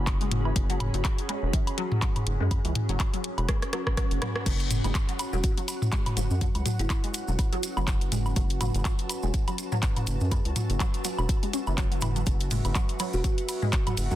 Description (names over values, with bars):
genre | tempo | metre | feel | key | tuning
minimal techno | 123 BPM | 4/4 | swing 56% on 16ths | F# minor | A4 = 439 Hz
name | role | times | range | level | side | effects
rubbery square bass | bass | 0.0-14.2 s | E1 to F#2 | -28 LUFS | equal | sidechain pumping
deep dark ambient pad | texture | 0.0-14.2 s | C#4 to B5 | -38 LUFS | right 1 dB | chorus, built-in reverb, sidechain pumping
pulsing gated texture | texture | 0.0-14.2 s | C#4 to A5 | -41 LUFS | left 1 dB | chorus, built-in reverb, sidechain pumping
electronic kick drum | drums | 0.1-13.8 s | none | -27 LUFS | equal | none
house drum kit | drums | 0.1-14.1 s | crash cymbal, handclaps, hi-hat, ride cymbal, rim click | -34 LUFS | left 1 dB | soft clipping on snare
resonant blip pluck | riff | 0.2-14.2 s | E3 to C#4 | -36 LUFS | equal | phaser, lush chorus, sidechain pumping, tape echo
electronic toms and woodblock | percussion | 0.3-14.0 s | none | -31 LUFS | equal | none
maracas | percussion | 4.5-14.2 s | none | -41 LUFS | right 3 dB | none
kalimba | melody | 5.3-7.5, 13.1-13.3 s | E4 to F#4 | -37 LUFS | right 2 dB | tape echo
room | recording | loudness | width
light reverb, digital ambience | dense, heavily limited modern master | -25 LUFS | side -14 dB against mid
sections
0.0-14.2 A section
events
drum fill 3.5-4.5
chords
0.0 F#5